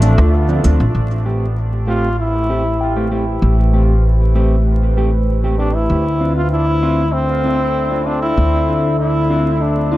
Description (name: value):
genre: ambient dub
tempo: 97 BPM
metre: 4/4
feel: straight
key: A minor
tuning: A4 = 440 Hz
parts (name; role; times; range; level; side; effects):
- bright trombone; melody; 0.0-10.0 s; A3 to F4; -20 LUFS; equal; dub echo
- warbly tape-like pad; sustained chords; 0.0-10.0 s; A3 to E5; -25 LUFS; equal; chorus, built-in reverb
- mellow electric guitar; stabs; 0.0-10.0 s; F3 to G4; -24 LUFS; right 1 dB; dub echo
- upright bass; bass; 0.0-10.0 s; A1 to D2; -15 LUFS; equal; none
- electronic hi-hat; drums; 0.0-0.8 s; none; -35 LUFS; equal; dub echo
- soft synth bell; arpeggios; 2.5-5.9, 9.9-10.0 s; E4 to G5; -28 LUFS; left 1 dB; chorus, low-pass filter, dub echo
room: light reverb, digital ambience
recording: vinyl crackle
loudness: -13 LUFS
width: side -16 dB against mid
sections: 0.9-10.0 A section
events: none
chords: 0.0 Dm7; 0.9 Am7; 5.9 Dm7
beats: 0.33 | 0.95 1.57 2.19 2.81 | 3.42 4.04 4.66 5.28 | 5.90 6.52 7.13 7.75 | 8.37 8.99 9.61